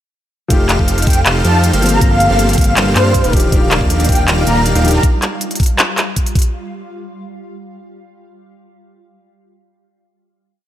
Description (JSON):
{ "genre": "future bass", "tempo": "159 BPM", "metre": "4/4", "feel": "half-time", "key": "Eb lydian", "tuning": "A4 = 440 Hz", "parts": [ { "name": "dark grand piano", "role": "accompaniment", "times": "0.5-5.1 s", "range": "F3 to A4", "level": "-21 LUFS", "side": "left 2 dB", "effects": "sidechain pumping" }, { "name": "shimmering ambient pad", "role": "sustained chords", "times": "1.3-6.5 s", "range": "C3 to A4", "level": "-28 LUFS", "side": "left 1 dB", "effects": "chorus, built-in reverb, phaser, sidechain pumping" }, { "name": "airy dreamy lead", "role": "arpeggios", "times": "0.5-5.0 s", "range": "F5", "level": "-24 LUFS", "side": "equal", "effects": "chorus, sidechain pumping, digital delay" }, { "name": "supersaw chords", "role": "riff", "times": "0.5-5.0 s", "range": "Bb3 to F5", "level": "-20 LUFS", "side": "equal", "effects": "sidechain pumping" }, { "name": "fat analog bass", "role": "bass", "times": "0.5-5.0 s", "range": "Eb1 to G2", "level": "-15 LUFS", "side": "equal", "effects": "sidechain pumping" }, { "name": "electronic kick drum", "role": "drums", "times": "0.5-6.4 s", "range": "none", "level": "-14 LUFS", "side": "equal", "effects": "none" }, { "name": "pop drum kit", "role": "drums", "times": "0.5-6.5 s", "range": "handclaps, hi-hat", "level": "-17 LUFS", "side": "equal", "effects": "none" }, { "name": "breathy flute-like synth lead", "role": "melody", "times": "1.1-5.0 s", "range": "C5 to Bb5", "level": "-19 LUFS", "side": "equal", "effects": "ensemble chorus, vintage 12-bit sampler grit, sidechain pumping, digital delay" }, { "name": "wide unison pluck", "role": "arpeggios", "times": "3.5-5.0 s", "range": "D4 to D5", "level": "-31 LUFS", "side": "left 2 dB", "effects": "none" } ], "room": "light reverb", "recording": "none", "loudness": "-11 LUFS", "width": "side -12 dB against mid", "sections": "0.5-6.5 drop", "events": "drop 0.5-6.5", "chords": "0.5 F9; 1.8 Gm11; 3.3 Ebmaj9", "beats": "| 0.50 0.88 1.26 1.64 | 2.01 2.39 2.77 3.15 | 3.52 3.90 4.28 4.66 | 5.03 5.41 5.79 6.17" }